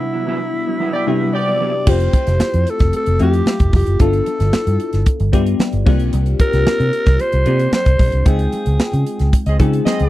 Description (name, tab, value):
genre	polished 1980s jazz-funk pop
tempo	113 BPM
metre	4/4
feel	straight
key	F major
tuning	A4 = 440 Hz
part	breathy alto saxophone	melody	0.0-9.3 s	E4 to D5	-20 LUFS	equal	slapback echo
part	bell-like FM electric piano	accompaniment	0.0-10.1 s	C3 to G5	-21 LUFS	left 4 dB	phaser, lush chorus
part	mellow electric guitar	riff	0.0-1.8 s	F#3 to F#4	-25 LUFS	right 4 dB	ensemble chorus
part	warm horn section	second line	0.9-1.7, 9.5-10.1 s	B3 to Eb5	-22 LUFS	right 2 dB	none
part	vintage muted fingered electric bass	bass	1.9-10.1 s	F1 to Db3	-16 LUFS	equal	none
part	tight funk drum kit	drums	1.9-10.1 s	crash cymbal, hi-hat, kick drum, snare drum	-15 LUFS	equal	none
part	congas	percussion	1.9-10.1 s	none	-27 LUFS	right 3 dB	none
room	little or no reverb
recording	dry, close 1970s-style studio recording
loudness	-13 LUFS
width	side -15 dB against mid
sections	0.0-1.9 A section; 1.9-10.1 A section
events	break 0.0-1.9; band accent 0.0-1.9, 8.3-10.1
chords	0.0 Cmaj9#11; 1.9 Fmaj9; 4.0 G13; 5.9 C7sus4; 8.3 Dbmaj9#11